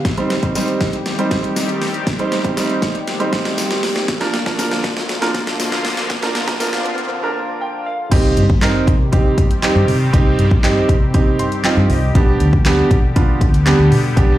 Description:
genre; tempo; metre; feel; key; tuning
dance-pop; 119 BPM; 4/4; straight; C minor; A4 = 440 Hz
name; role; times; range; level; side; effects
warm concert grand piano; accompaniment; 0.0-14.4 s; F3 to C6; -19 LUFS; right 3 dB; none
sweeping resonant pad; sustained chords; 0.0-14.4 s; D3 to G4; -25 LUFS; left 2 dB; chorus, sidechain pumping
pop drum kit; drums; 0.0-14.3 s; crash cymbal, handclaps, hi-hat, kick drum, snare drum; -17 LUFS; equal; none
riser and impact; sound effects; 2.3-10.1 s; none; -30 LUFS; left 1 dB; none
tambourine; percussion; 0.6-6.7 s; none; -29 LUFS; left 8 dB; none
vintage muted fingered electric bass; bass; 8.1-14.4 s; B1 to C3; -16 LUFS; equal; sidechain pumping
room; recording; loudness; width
little or no reverb; played on a big sound system in a bare room, large studio reverb, high-pass filter; -14 LUFS; side -14 dB against mid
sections
0.0-8.1 A section; 8.1-14.4 B section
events
build-up 0.0-8.1; drum fill 0.0-7.1; break 7.1-8.1; grand piano fill 7.4-8.1, 11.1-12.2; drop 8.1-14.4; impact 8.1-10.1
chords
0.1 Cm; 4.1 Bb; 8.1 Cm; 12.2 G/B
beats
| 0.05 0.56 1.06 1.56 | 2.07 2.57 3.08 3.58 | 4.08 4.59 5.09 5.60 | 6.10 6.61 7.11 7.61 | 8.12 8.62 9.13 9.63 | 10.13 10.64 11.14 11.65 | 12.15 12.66 13.16 13.66 | 14.17

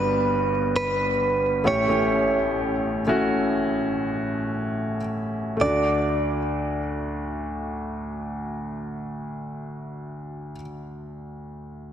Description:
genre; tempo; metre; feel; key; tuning
pop; 56-67 BPM; 4/4; straight; D major; A4 = 440 Hz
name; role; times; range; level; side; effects
direct-recorded clean electric guitar; melody; 0.0-10.6 s; B4 to D5; -24 LUFS; right 2 dB; warbly pitch drift, ping-pong delay
clear baby grand piano; accompaniment; 0.0-11.9 s; G1 to G4; -25 LUFS; left 1 dB; none
room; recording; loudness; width
moderate concert hall reverb, RT60 2.2 s; dense, heavily limited modern master; -22 LUFS; side -9 dB against mid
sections
0.0-5.6 A section; 5.6-9.9 B section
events
slowing down 0.0-5.6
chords
0.0 Gmaj7; 1.6 A7; 5.6 D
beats
0.73 | 1.65 2.59 3.56 4.56 | 5.60 6.67 7.74 8.80

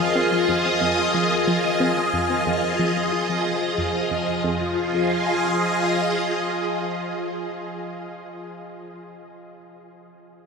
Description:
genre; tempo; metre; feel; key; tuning
ambient, sequencer-driven space music; 91 BPM; 4/4; straight; F minor; A4 = 440 Hz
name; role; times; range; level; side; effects
phased string machine; sustained chords; 0.0-7.8 s; F3 to Eb5; -22 LUFS; equal; ensemble chorus, phaser
concert harp; arpeggios; 0.0-8.3 s; C3 to C4; -35 LUFS; right 1 dB; none
analog pluck; riff; 0.0-4.7 s; F2 to C4; -28 LUFS; equal; chorus, ping-pong delay
bubbling stepped-filter texture; texture; 0.0-4.5 s; F4 to F5; -32 LUFS; equal; chorus, built-in reverb
room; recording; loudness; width
wet huge ambient reverb, RT60 9.3 s; dreamy mix soaked in reverb; -20 LUFS; side -5 dB against mid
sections
0.0-4.4 A section; 4.4-7.1 B section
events
fade-out on harp 0.0-4.4; filter sweep on synth arpeggio sound 0.0-4.4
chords
0.0 Fm7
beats
0.48 1.14 | 1.80 2.46 3.12 3.78 | 4.44 5.10 5.76 6.42

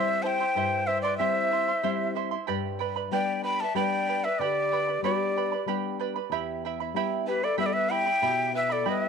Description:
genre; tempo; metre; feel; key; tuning
andean folk, Andean ensemble; 94 BPM; 3/4; straight; unclear; A4 = 440 Hz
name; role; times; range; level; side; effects
breathy quena; melody; 0.0-9.1 s; B4 to B5; -27 LUFS; equal; none
breathy bright pan flute; second line; 0.0-9.1 s; G4 to G5; -34 LUFS; left 12 dB; none
charango; accompaniment; 0.0-9.1 s; E4 to C6; -31 LUFS; right 14 dB; none
nylon-string guitar; accompaniment; 0.0-9.1 s; E2 to E4; -34 LUFS; left 11 dB; none
room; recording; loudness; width
light reverb, small room ambience; 1960s-style stereo with parts hard left and right; -25 LUFS; side -6 dB against mid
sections
0.0-9.1 A section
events
none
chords
0.0 C; 2.5 G; 6.3 Em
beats
| 0.55 1.19 1.83 | 2.47 3.11 3.75 | 4.39 5.03 5.67 | 6.31 6.95 7.58 | 8.22 8.86

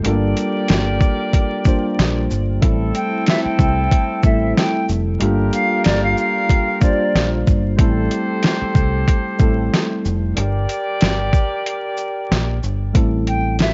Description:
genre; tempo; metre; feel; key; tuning
hip hop, boom-bap hip-hop; 93 BPM; 4/4; swing 55% on 16ths; A phrygian; A4 = 440 Hz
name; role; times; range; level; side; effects
tine electric piano; accompaniment; 0.0-13.7 s; G3 to C5; -24 LUFS; equal; cassette tape, high-pass filter, low-pass filter
clear horn section; stabs; 0.0-12.6 s; C4 to D5; -27 LUFS; equal; high-pass filter, low-pass filter, cassette tape, tape echo
boom bap sampler-style drum kit; drums; 0.0-13.7 s; hi-hat, kick drum, shaker, snare drum; -19 LUFS; equal; cassette tape
deep dub fingered electric bass; bass; 0.1-13.7 s; F1 to C2; -22 LUFS; equal; none
silver concert flute; melody; 3.0-7.3, 13.3-13.7 s; D5 to G5; -24 LUFS; equal; high-pass filter, low-pass filter, cassette tape, tape echo
room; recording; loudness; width
little or no reverb; home recording on cassette, vinyl crackle, nothing above 7.7 kHz; -18 LUFS; mono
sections
0.0-12.9 A section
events
break 10.4-12.9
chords
0.0 Gm7; 2.6 Am7; 5.2 Gm7; 7.8 Am7; 10.4 Gm; 12.9 Am7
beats
| 0.05 0.69 1.34 1.98 | 2.63 3.27 3.92 4.56 | 5.21 5.85 6.50 7.14 | 7.79 8.43 9.08 9.72 | 10.37 11.01 11.66 12.30 | 12.95 13.59

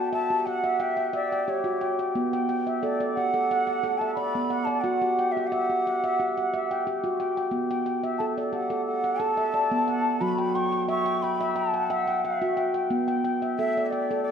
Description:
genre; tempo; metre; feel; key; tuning
world meditative, meditative tuned percussion; 89 BPM; 4/4; straight; B minor; A4 = 435 Hz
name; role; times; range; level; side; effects
breathy mellow bansuri; melody; 0.0-14.3 s; C#5 to C#6; -27 LUFS; equal; tape echo
handpan; arpeggios; 0.0-14.3 s; F#3 to G5; -26 LUFS; equal; none
room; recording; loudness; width
wet echo chamber reverb, RT60 1.4 s, studio reverb; none; -24 LUFS; side -7 dB against mid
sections
0.0-14.3 A section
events
none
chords
0.0 Emadd9; 2.1 Bm; 4.8 Emadd9/F#; 7.5 Bm; 10.2 A13/F# (rootless); 12.9 Bm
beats
0.12 0.79 1.46 | 2.14 2.81 3.48 4.16 | 4.83 5.50 6.18 6.85 | 7.52 8.20 8.87 9.54 | 10.22 10.89 11.56 12.24 | 12.91 13.58 14.25

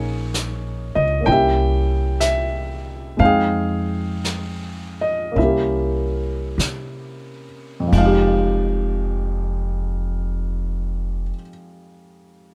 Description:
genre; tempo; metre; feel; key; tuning
jazz ballad; 42-67 BPM; 4/4; swing 68% on 8ths; F harmonic minor; A4 = 440 Hz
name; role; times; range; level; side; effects
warm grand piano; accompaniment; 0.0-12.5 s; F2 to G5; -24 LUFS; equal; none
upright bass; bass; 0.0-11.3 s; F1 to C3; -25 LUFS; equal; none
vintage brush drum kit; drums; 0.3-9.1 s; brushed snare drum, hi-hat, kick drum, ride cymbal, snare drum; -31 LUFS; equal; none
room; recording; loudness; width
light reverb; none; -21 LUFS; mono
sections
0.0-7.9 A section; 7.9-12.5 B section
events
slowing down 0.0-7.9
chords
0.0 Bbm7; 1.3 C7b9; 3.2 Fm7; 5.4 C7b9; 7.9 Fm7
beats
0.36 1.27 2.22 | 3.20 4.25 5.37 6.59 | 7.93 9.35 10.75 12.16

